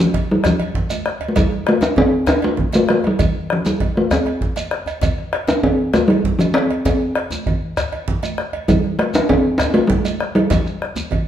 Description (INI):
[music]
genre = west african traditional, West African drum ensemble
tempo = 131 BPM (dotted quarters)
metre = 12/8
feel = straight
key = F major pentatonic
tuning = A4 = 439 Hz
[part]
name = talking drum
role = melody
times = 0.0-11.3 s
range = F3 to D4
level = -16 LUFS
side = equal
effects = none
[part]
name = bombo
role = percussion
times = 0.1-11.3 s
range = none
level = -23 LUFS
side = equal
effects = none
[part]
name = congas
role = percussion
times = 0.1-11.3 s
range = none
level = -27 LUFS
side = right 3 dB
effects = none
[part]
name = cowbell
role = percussion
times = 0.1-11.3 s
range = none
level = -28 LUFS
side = right 6 dB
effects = none
[part]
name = djembe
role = percussion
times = 0.1-11.1 s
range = none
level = -29 LUFS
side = left 3 dB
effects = none
[part]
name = shekere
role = percussion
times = 0.5-11.1 s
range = none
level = -31 LUFS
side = right 1 dB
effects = none
[sound]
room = wet large studio reverb, RT60 1.3 s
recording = band playing live in one room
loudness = -15 LUFS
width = side -10 dB against mid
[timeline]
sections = 0.0-11.3 A section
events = none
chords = none